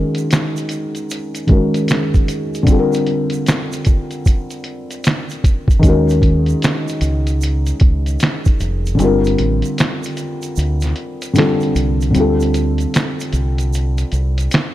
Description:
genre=lo-fi hip hop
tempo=76 BPM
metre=4/4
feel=swing 65% on 16ths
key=unclear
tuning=A4 = 441 Hz
part: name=felt-muted upright piano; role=accompaniment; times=0.0-14.7 s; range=D3 to Bb4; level=-18 LUFS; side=left 1 dB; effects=none
part: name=lo-fi sampler-style drum kit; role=drums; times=0.1-14.7 s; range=finger snaps, hi-hat, kick drum, snare drum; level=-16 LUFS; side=equal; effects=none
part: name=egg shaker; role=percussion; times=0.2-14.7 s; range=none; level=-37 LUFS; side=right 9 dB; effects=none
part: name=deep dub fingered electric bass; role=bass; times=5.8-14.5 s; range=F1 to Eb2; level=-17 LUFS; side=equal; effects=none
room=light reverb, digital ambience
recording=dark, warm production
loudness=-14 LUFS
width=side -14 dB against mid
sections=0.0-12.1 A section; 12.1-14.7 B section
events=break 0.0-5.8; kick muted 9.0-12.1, 12.1-14.7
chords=0.0 Ebm7; 2.7 Gm7; 5.8 Ebm7; 9.0 Gm9; 12.1 Dm7

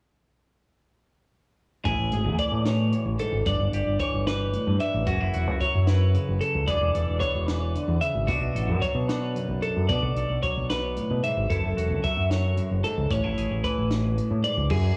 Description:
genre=math rock and midwest emo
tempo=75 BPM (dotted quarters)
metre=6/8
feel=straight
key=A major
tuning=A4 = 442 Hz
part: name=twangy electric guitar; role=accompaniment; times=1.9-15.0 s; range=F#2 to A4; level=-34 LUFS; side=equal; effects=cassette tape
part: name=twelve-string electric guitar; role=arpeggios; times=1.9-15.0 s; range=F#4 to E5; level=-31 LUFS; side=equal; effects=cassette tape, analog delay
part: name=growling fingered electric bass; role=bass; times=1.9-14.9 s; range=E1 to B2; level=-28 LUFS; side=equal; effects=overdrive
part: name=compact cocktail drum kit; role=drums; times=1.9-14.8 s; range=crash cymbal, hi-hat, kick drum, snare drum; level=-34 LUFS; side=equal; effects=none
room=studio reverb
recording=home recording on cassette, studio ambience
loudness=-25 LUFS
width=mono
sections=1.8-14.7 A section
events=none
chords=1.8 Amaj7; 3.5 Em7/G; 5.1 F#m7; 6.7 E7; 8.3 Bm7; 11.5 F#m7; 13.1 Amaj7

